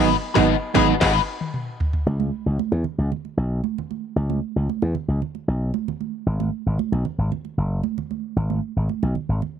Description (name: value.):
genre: funk.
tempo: 114 BPM.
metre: 4/4.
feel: straight.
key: C# minor.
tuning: A4 = 440 Hz.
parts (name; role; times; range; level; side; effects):
clear horn section; second line; 0.0-1.1 s; B3 to G#4; -26 LUFS; left 1 dB; none.
crunchy overdriven guitar; accompaniment; 0.0-1.2 s; D#4 to B4; -23 LUFS; left 14 dB; wah.
mellow reed electric piano; stabs; 0.0-0.9 s; F#3 to D#4; -22 LUFS; right 13 dB; fast tremolo.
slap bass with an envelope filter; bass; 0.0-9.4 s; F#1 to E2; -21 LUFS; equal; none.
industrial drum kit; drums; 0.4-2.1 s; crash cymbal, kick drum, snare drum, toms; -23 LUFS; equal; distortion.
congas; percussion; 2.1-9.5 s; none; -28 LUFS; right 14 dB; none.
room: light reverb, digital ambience.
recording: 1960s-style stereo with parts hard left and right.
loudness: -21 LUFS.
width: side -8 dB against mid.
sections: 0.0-2.1 A section; 2.1-9.6 B section.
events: band accent 0.0-2.1; drum fill 1.0-2.1.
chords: 0.0 G#m7; 2.1 C#m7; 6.3 G#m.